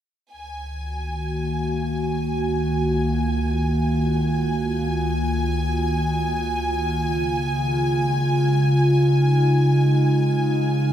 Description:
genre	ambient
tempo	free time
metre	none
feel	none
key	unclear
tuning	A4 = 440 Hz
part	warbly tape-like pad	sustained chords	0.6-10.9 s	Db2 to Gb4	-20 LUFS	equal	chorus, built-in reverb, shimmer reverb
part	bright studio violin section	texture	0.3-10.9 s	Ab5	-28 LUFS	left 1 dB	shimmer reverb
room	wet cathedral reverb, RT60 6.5 s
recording	none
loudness	-19 LUFS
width	side -10 dB against mid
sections	0.3-10.9 A section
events	none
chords	0.3 Ebm7/Db; 7.0 Db

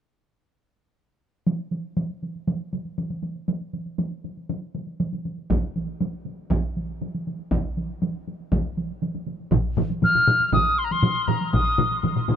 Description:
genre	japanese traditional, taiko drum ensemble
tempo	119 BPM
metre	4/4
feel	straight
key	unclear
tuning	A4 = 443 Hz
part	taiko ensemble	percussion	1.5-12.4 s	none	-27 LUFS	right 2 dB	none
part	taiko ensemble	percussion	5.5-11.7 s	none	-27 LUFS	equal	none
part	taiko ensemble	percussion	9.5-12.4 s	none	-26 LUFS	left 7 dB	none
part	taiko ensemble	percussion	9.5-12.4 s	none	-26 LUFS	right 5 dB	none
part	mellow piccolo	melody	10.0-12.0 s	Bb5 to F6	-20 LUFS	left 1 dB	none
room	light reverb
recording	none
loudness	-23 LUFS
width	side -8 dB against mid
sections	1.5-9.5 A section; 9.5-12.4 B section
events	none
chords	none

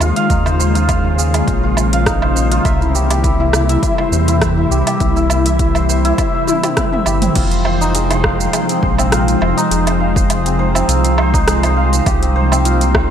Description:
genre	organic downtempo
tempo	102 BPM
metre	4/4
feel	swing 54% on 16ths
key	F minor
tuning	A4 = 437 Hz
part	ethereal airy pad	sustained chords	0.0-13.1 s	C3 to G5	-19 LUFS	left 1 dB	ensemble chorus, built-in reverb, sidechain pumping, shimmer reverb
part	santur	arpeggios	0.0-13.1 s	C4 to F5	-18 LUFS	left 1 dB	vintage 12-bit sampler grit, ping-pong delay, shimmer reverb
part	round analog bass	bass	0.0-13.1 s	F1 to E2	-16 LUFS	equal	sidechain pumping
part	deep house drum kit	drums	0.0-13.1 s	crash cymbal, hi-hat, rim click, shaker, toms, woodblock	-20 LUFS	right 2 dB	overdrive
part	electronic kick drum	drums	0.3-13.1 s	none	-19 LUFS	equal	overdrive
room	light reverb, digital ambience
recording	bright 1980s-style digital production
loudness	-12 LUFS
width	side -9 dB against mid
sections	0.0-7.4 A section; 7.4-13.1 B section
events	filter sweep on santur 0.0-7.4; drum fill 6.5-7.4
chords	0.0 Eb7sus4; 2.7 C7; 7.4 Fm9; 12.1 Cm7

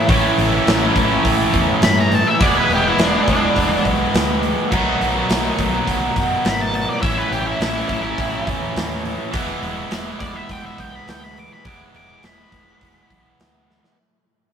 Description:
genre	blues rock power trio and southern rock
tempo	104 BPM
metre	4/4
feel	straight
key	E major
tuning	A4 = 440 Hz
part	octave-fuzz lead guitar	melody	0.0-13.9 s	D4 to D6	-22 LUFS	left 1 dB	distortion
part	distorted electric guitar	riff	0.0-14.0 s	A2 to E4	-19 LUFS	right 1 dB	overdrive
part	vintage muted fingered electric bass	bass	0.1-13.8 s	E1 to G2	-26 LUFS	equal	none
part	huge arena drum kit	drums	0.1-14.0 s	crash cymbal, hi-hat, kick drum, snare drum	-21 LUFS	equal	none
room	moderate small room reverb, RT60 0.6 s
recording	rough rehearsal-room recording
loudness	-16 LUFS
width	side -8 dB against mid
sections	0.0-14.0 A section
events	lead electric guitar solo 0.0-14.0; fade-out 2.9-14.0; drum fill 13.7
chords	0.0 A7; 2.4 E7; 4.7 B; 7.0 A; 9.3 E7

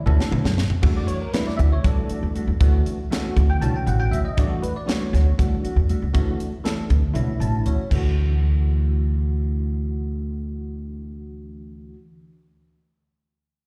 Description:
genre	electric jazz fusion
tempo	237 BPM (eighths)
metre	7/8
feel	straight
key	D major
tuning	A4 = 439 Hz
part	sweeping resonant pad	sustained chords	0.0-0.8 s	none	barely audible	none	none
part	bell-like tine electric piano	accompaniment	0.1-12.0 s	E3 to A5	-31 LUFS	equal	ensemble chorus, slapback echo
part	mellow electric guitar	stabs	0.1-12.0 s	E3 to F#4	-35 LUFS	equal	analog chorus, slapback echo
part	upright bass	bass	0.1-11.9 s	A1 to D3	-24 LUFS	equal	none
part	crisp fusion drum kit	drums	0.1-8.0 s	crash cymbal, hi-hat, kick drum, snare drum, toms	-26 LUFS	equal	none
room	little or no reverb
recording	live gig heard through the venue's PA, recital hall reverb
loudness	-22 LUFS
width	mono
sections	0.8-7.9 A section; 7.9-11.4 B section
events	drum fill 0.0-0.8; tine electric piano fill 7.1-7.9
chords	0.0 Dmaj9; 0.8 Em11; 2.6 Dmaj9; 4.4 Em11; 6.1 Dmaj9; 7.9 Dadd9

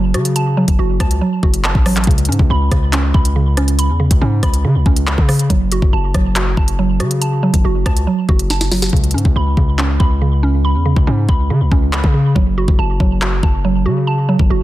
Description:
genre	hip hop, drill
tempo	140 BPM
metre	4/4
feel	half-time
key	unclear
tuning	A4 = 440 Hz
part	mallet-like synth pluck	arpeggios	0.0-14.6 s	C#3 to B5	-18 LUFS	right 2 dB	chorus, tape echo
part	hard-hitting 808-style bass	bass	0.0-14.6 s	F#1 to C#3	-16 LUFS	equal	none
part	drill drum kit	drums	0.1-14.5 s	handclaps, hi-hat, kick drum, rim click, snare drum	-15 LUFS	equal	none
room	digital ambience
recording	dense, heavily limited modern master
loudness	-12 LUFS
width	side -15 dB against mid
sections	0.0-8.9 A section; 8.9-14.6 B section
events	drum fill 8.5-8.9; hi-hats muted 8.9-14.6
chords	0.0 F#m; 2.1 C#7(no3); 5.5 F#m; 8.9 C#7(no3); 12.4 F#m

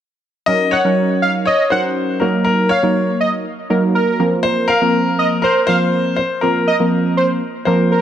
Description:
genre	pop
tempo	121 BPM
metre	4/4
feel	straight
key	Bb minor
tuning	A4 = 441 Hz
part	clear concert grand piano	melody	0.5-8.0 s	Bb4 to Eb5	-18 LUFS	left 3 dB	dub echo
part	warm analog keys	accompaniment	0.5-8.0 s	F3 to Bb4	-17 LUFS	right 1 dB	chorus
part	wide unison lead	melody	0.7-8.0 s	Bb4 to Gb5	-19 LUFS	right 2 dB	none
room	light reverb, studio reverb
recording	none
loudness	-14 LUFS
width	side -10 dB against mid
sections	0.5-8.0 A section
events	none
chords	0.5 Gb6; 2.2 Ebm; 4.2 Bbsus2

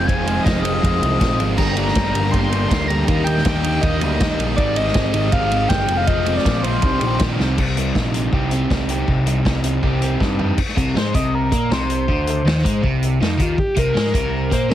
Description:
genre	indie rock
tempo	160 BPM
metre	4/4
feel	straight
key	C minor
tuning	A4 = 441 Hz
part	overdriven synth lead	melody	0.0-7.2, 11.0-14.7 s	Eb4 to C6	-23 LUFS	left 2 dB	distortion, phaser
part	glockenspiel with soft plastic mallets	second line	0.0-7.2 s	C6 to C7	-32 LUFS	right 3 dB	none
part	tonewheel organ	sustained chords	0.0-7.6 s	D3 to G5	-30 LUFS	right 1 dB	chorus vibrato, slow rotary speaker
part	crunchy overdriven guitar	riff	0.0-14.7 s	G2 to G4	-21 LUFS	equal	none
part	growling picked electric bass	bass	0.0-14.7 s	F1 to Bb2	-22 LUFS	equal	overdrive
part	vintage drum kit	drums	0.1-14.7 s	crash cymbal, hi-hat, kick drum, ride cymbal, snare drum, toms	-22 LUFS	equal	none
room	small room ambience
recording	heavily compressed radio sound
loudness	-16 LUFS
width	side -12 dB against mid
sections	0.0-7.6 A section; 7.6-10.6 B section; 10.6-14.7 C section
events	drum fill 7.4, 10.2-10.6; analog synth lead solo 10.6-14.7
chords	0.0 Fm7; 1.6 Gm; 3.1 Ebmaj7; 4.6 Abmaj7; 5.9 Fm7; 6.8 Cmadd9; 7.6 Cm

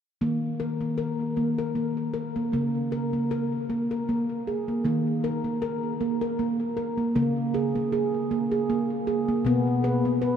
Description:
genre	world meditative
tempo	78 BPM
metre	3/4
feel	swing 54% on 16ths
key	unclear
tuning	A4 = 440 Hz
part	handpan	arpeggios	0.2-10.4 s	Cb3 to Cb5	-24 LUFS	equal	tape echo
room	wet huge ambient reverb, RT60 8.6 s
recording	in a vast, echoing space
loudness	-24 LUFS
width	side -8 dB against mid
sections	0.2-4.8 A section; 4.8-10.4 B section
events	none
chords	0.2 Eb5; 2.5 Db5; 4.8 Eb5; 7.2 Db5; 9.5 N.C.

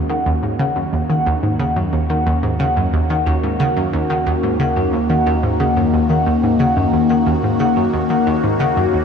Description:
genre	ambient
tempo	90 BPM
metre	4/4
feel	straight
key	Eb minor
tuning	A4 = 440 Hz
part	phased analog pad	sustained chords	0.0-9.0 s	Eb3 to Gb4	-19 LUFS	left 2 dB	phaser, chorus
part	analog drone	bass	0.2-9.0 s	Eb2	-26 LUFS	right 1 dB	chorus
part	vibraphone with medium mallets	arpeggios	0.1-8.9 s	Db4 to Gb5	-22 LUFS	moving between left 4 dB and right 4 dB	auto-pan, low-pass filter, ping-pong delay
part	analog pluck	riff	0.1-9.0 s	Eb2 to Eb3	-19 LUFS	right 1 dB	chorus, ping-pong delay
room	wet huge ambient reverb, RT60 8.0 s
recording	dark, warm production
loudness	-15 LUFS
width	side -6 dB against mid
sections	0.0-9.0 A section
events	filter sweep on vibraphone 0.0-9.0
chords	0.0 Ebm7

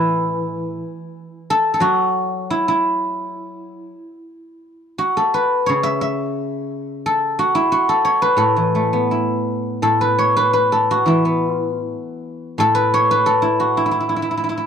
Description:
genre	chinese traditional, Chinese solo plucked strings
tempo	79-92 BPM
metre	2/4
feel	rubato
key	A gong mode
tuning	A4 = 440 Hz
part	guzheng	solo	0.0-14.7 s	A2 to E5	-16 LUFS	equal	none
room	small room ambience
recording	dry, close 1970s-style studio recording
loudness	-16 LUFS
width	side -7 dB against mid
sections	0.0-9.8 A section; 9.8-14.7 B section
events	none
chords	none

